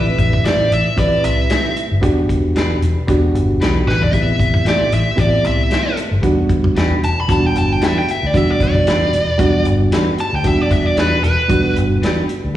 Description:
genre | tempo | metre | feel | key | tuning
straight-eighth soul blues | 114 BPM | 4/4 | swing 56% on 16ths | E minor | A4 = 441 Hz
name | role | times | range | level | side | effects
dark smooth lead guitar | melody | 0.0-11.8 s | B4 to B5 | -19 LUFS | equal | overdrive, plate reverb, slapback echo
reed electric piano | accompaniment | 0.0-12.6 s | G3 to B4 | -19 LUFS | right 2 dB | fast tremolo, plate reverb, slapback echo
vintage muted fingered electric bass | bass | 0.0-12.5 s | E1 to D2 | -18 LUFS | left 1 dB | none
warm soul drum kit | drums | 0.2-12.4 s | hi-hat, kick drum, snare drum, toms | -20 LUFS | equal | none
clean electric guitar | stabs | 0.4-12.2 s | A2 to C5 | -24 LUFS | left 4 dB | spring reverb, plate reverb, slapback echo
room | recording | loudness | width
light reverb | live gig heard through the venue's PA, recital hall reverb, studio reverb | -13 LUFS | side -13 dB against mid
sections
0.0-12.6 A section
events
drum fill 3.9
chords
0.0 Am7; 2.0 Em7; 4.1 Am7; 6.2 Em7

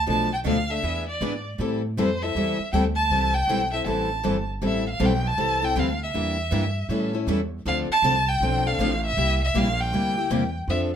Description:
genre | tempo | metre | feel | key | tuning
acoustic string swing (jazz manouche) | 158 BPM | 4/4 | swing 63% on 8ths | A minor | A4 = 440 Hz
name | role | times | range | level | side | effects
rich violin | melody | 0.0-10.8 s | C5 to A5 | -25 LUFS | right 1 dB | slapback echo, plate reverb
upright bass | bass | 0.0-11.0 s | G1 to A2 | -28 LUFS | equal | none
picked steel-string acoustic guitar | accompaniment | 0.1-10.9 s | B2 to A4 | -28 LUFS | left 6 dB | none
picked steel-string acoustic guitar | accompaniment | 0.1-10.9 s | B2 to B4 | -29 LUFS | right 3 dB | none
room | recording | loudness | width
moderate club reverb, RT60 0.5 s | none | -21 LUFS | side -9 dB against mid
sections
0.0-4.6 A section; 4.6-11.0 B section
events
none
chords
0.1 Bm7b5; 0.8 E7; 1.6 Am7; 6.1 Em7b5; 6.9 A7; 7.7 Dm7; 9.2 C7

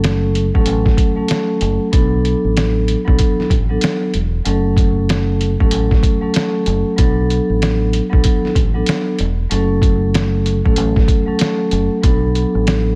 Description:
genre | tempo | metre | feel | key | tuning
hip hop, boom-bap hip-hop | 95 BPM | 4/4 | swing 61% on 16ths | B minor | A4 = 440 Hz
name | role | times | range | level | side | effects
vibraphone with soft mallets | accompaniment | 0.0-13.0 s | F#3 to A4 | -20 LUFS | equal | cassette tape, high-pass filter, low-pass filter
deep dub fingered electric bass | bass | 0.0-13.0 s | E1 to B1 | -20 LUFS | equal | none
trip hop sampler-style drum kit | drums | 0.0-12.9 s | hi-hat, kick drum, snare drum | -19 LUFS | equal | overdrive
room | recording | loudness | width
light reverb | none | -16 LUFS | mono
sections
0.0-13.0 A section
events
none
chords
0.0 F#m; 1.9 Bm7; 4.5 F#m; 7.0 Bm7; 9.5 F#m; 12.0 Bm7

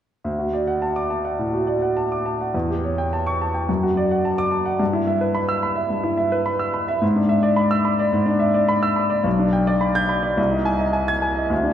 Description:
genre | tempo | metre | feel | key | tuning
classical, virtuoso piano study | 107 BPM | 4/4 | rubato | D major | A4 = 445 Hz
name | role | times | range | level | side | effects
clear grand piano | solo | 0.2-11.7 s | B1 to Ab6 | -18 LUFS | equal | none
room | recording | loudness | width
wet recital hall reverb, RT60 1.9 s | heard from further back in the room | -18 LUFS | side -10 dB against mid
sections
0.3-11.7 A section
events
none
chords
0.3 D; 2.5 A7/E; 3.7 D/F#; 4.8 Em/G; 7.0 E7/G#; 9.3 G/B; 10.4 Ab/C

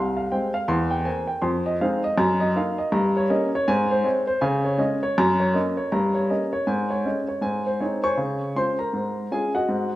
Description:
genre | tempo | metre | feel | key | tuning
jazz, stride piano | 160 BPM | 4/4 | swing 61% on 8ths | Db major | A4 = 440 Hz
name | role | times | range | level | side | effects
warm upright piano | solo | 0.0-10.0 s | C2 to Db6 | -21 LUFS | equal | none
room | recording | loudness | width
wet large studio reverb, RT60 1.4 s | band playing live in one room | -21 LUFS | side -15 dB against mid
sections
0.0-8.2 A section; 8.2-10.0 B section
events
none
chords
0.0 Fm; 0.7 C7/E; 1.4 Fm7; 2.2 Ebm/Gb; 2.9 Gdim; 3.7 Ab; 4.4 Db5; 5.2 Gb; 5.9 Gdim; 6.7 Db5/Ab; 7.4 Ab; 8.2 Db

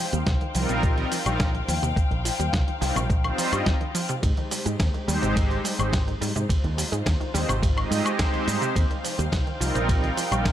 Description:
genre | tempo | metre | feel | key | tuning
nu-disco, nu disco | 106 BPM | 4/4 | straight | Eb major | A4 = 440 Hz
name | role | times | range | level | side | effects
dark studio string section | sustained chords | 0.0-10.5 s | Ab3 to G5 | -32 LUFS | left 3 dB | sidechain pumping
wide unison pluck | arpeggios | 0.0-10.5 s | C3 to Ab3 | -32 LUFS | right 2 dB | sidechain pumping, analog delay
picked electric bass with an envelope filter | bass | 0.1-10.5 s | Ab1 to Ab2 | -27 LUFS | equal | none
dusty soul sampler-style drum kit | drums | 0.1-10.5 s | hi-hat, ride cymbal, shaker, snare drum, woodblock | -30 LUFS | equal | none
electronic kick drum | drums | 0.3-10.5 s | none | -24 LUFS | equal | none
warm analog pad | accompaniment | 0.5-10.4 s | G3 to Eb5 | -29 LUFS | right 1 dB | chorus, tremolo, sidechain pumping, analog delay
room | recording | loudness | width
little or no reverb | none | -22 LUFS | side -11 dB against mid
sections
0.0-10.5 A section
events
none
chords
0.0 Eb69; 4.2 Abmaj7; 8.8 Eb69

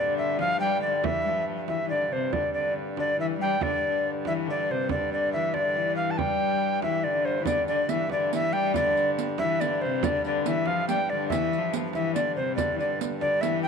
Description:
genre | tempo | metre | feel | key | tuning
medieval dance | 94 BPM (dotted quarters) | 6/8 | straight | unclear | A4 = 440 Hz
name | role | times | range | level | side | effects
tenor recorder | melody | 0.0-13.7 s | C5 to A5 | -26 LUFS | right 1 dB | none
warm viola da gamba | second line | 0.0-13.7 s | C3 to G3 | -29 LUFS | left 8 dB | none
warm hurdy-gurdy | drone | 0.0-13.7 s | G2 | -35 LUFS | right 3 dB | stereo widening
frame drum | percussion | 0.2-13.4 s | none | -33 LUFS | right 9 dB | none
riq | percussion | 7.5-13.6 s | none | -34 LUFS | right 18 dB | none
room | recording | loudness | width
wet echo chamber reverb, RT60 2.5 s | 1960s-style stereo with parts hard left and right | -24 LUFS | side -6 dB against mid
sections
0.0-7.5 A section; 7.5-13.7 A section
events
none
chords
none

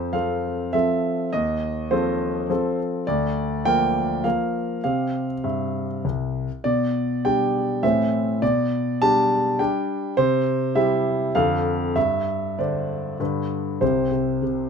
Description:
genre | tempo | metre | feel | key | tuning
classical-period piano sonatina | 101 BPM | 3/4 | rubato | F major, C major from 6.6 s | A4 = 440 Hz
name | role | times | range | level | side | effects
clear grand piano | solo | 0.0-14.7 s | C2 to A5 | -20 LUFS | equal | none
room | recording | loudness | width
light reverb | none | -20 LUFS | side -6 dB against mid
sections
0.0-13.8 A section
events
none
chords
0.0 F; 1.3 F7/Eb; 3.1 Bb/D; 4.8 C; 6.6 G/B; 7.8 Am; 8.4 G/B; 10.2 C; 11.3 Dm/F; 12.0 Gsus4; 13.2 G; 13.8 C5

